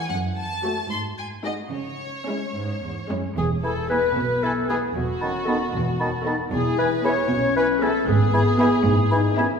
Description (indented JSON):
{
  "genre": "cinematic, playful, whimsical film cue",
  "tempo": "76 BPM (dotted quarters)",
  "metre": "6/8",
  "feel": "straight",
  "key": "C# minor, E major from 3.4 s",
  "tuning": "A4 = 437 Hz",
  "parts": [
    { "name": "rich studio violin section", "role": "melody", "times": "0.0-9.6 s", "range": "C#5 to B#5", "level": "-32 LUFS", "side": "left 2 dB", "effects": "none" },
    { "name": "dark studio violin section", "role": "second line", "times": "0.0-9.4 s", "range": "E4 to C#5", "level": "-30 LUFS", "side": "left 4 dB", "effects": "none" },
    { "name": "rich studio viola section", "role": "accompaniment", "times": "0.0-9.6 s", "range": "G#3 to A4", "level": "-29 LUFS", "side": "right 1 dB", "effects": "none" },
    { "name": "rich studio cello section", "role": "bass", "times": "0.1-9.5 s", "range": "E2 to C#3", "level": "-28 LUFS", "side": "right 2 dB", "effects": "none" },
    { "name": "warm clarinet", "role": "second line", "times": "3.4-9.4 s", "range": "F#4 to C#5", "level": "-25 LUFS", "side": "left 1 dB", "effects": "none" },
    { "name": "rich studio double bass section", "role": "bass", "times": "3.4-9.5 s", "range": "E1 to B1", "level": "-27 LUFS", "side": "right 2 dB", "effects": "none" },
    { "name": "clear oboe", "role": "second line", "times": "3.6-9.5 s", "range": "G#5 to A5", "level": "-31 LUFS", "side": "left 1 dB", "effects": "none" },
    { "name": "mellow hollow concert flute", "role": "second line", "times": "3.6-9.4 s", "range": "B5", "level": "-31 LUFS", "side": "equal", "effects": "none" },
    { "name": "warm bassoon", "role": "accompaniment", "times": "3.6-9.5 s", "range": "D#3 to E3", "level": "-30 LUFS", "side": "left 1 dB", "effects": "none" },
    { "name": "dark French horn section", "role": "sustained chords", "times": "4.2-9.5 s", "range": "B3 to E4", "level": "-27 LUFS", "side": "left 4 dB", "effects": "none" }
  ],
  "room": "wet scoring stage reverb, RT60 1.8 s",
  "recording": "heard from further back in the room",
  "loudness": "-20 LUFS",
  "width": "side -6 dB against mid",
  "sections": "0.0-3.4 A section; 3.4-9.6 B section",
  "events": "none",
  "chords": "0.1 F#m; 0.9 G#5; 1.7 C#m; 3.4 E; 5.0 B7/E; 6.5 E; 8.1 E/G#"
}